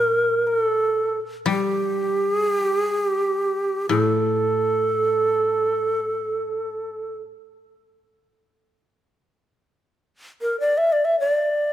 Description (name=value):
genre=japanese traditional, Japanese chamber music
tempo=free time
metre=none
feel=none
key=A in sen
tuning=A4 = 440 Hz
part: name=bright long shakuhachi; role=melody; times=0.0-11.7 s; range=G4 to E5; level=-20 LUFS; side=right 1 dB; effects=none
part: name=koto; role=accompaniment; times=0.0-7.3 s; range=A2 to G3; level=-26 LUFS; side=left 6 dB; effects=none
room=moderate concert hall reverb, RT60 2.3 s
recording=none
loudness=-20 LUFS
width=side -11 dB against mid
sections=0.0-11.7 A section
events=none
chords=none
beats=free time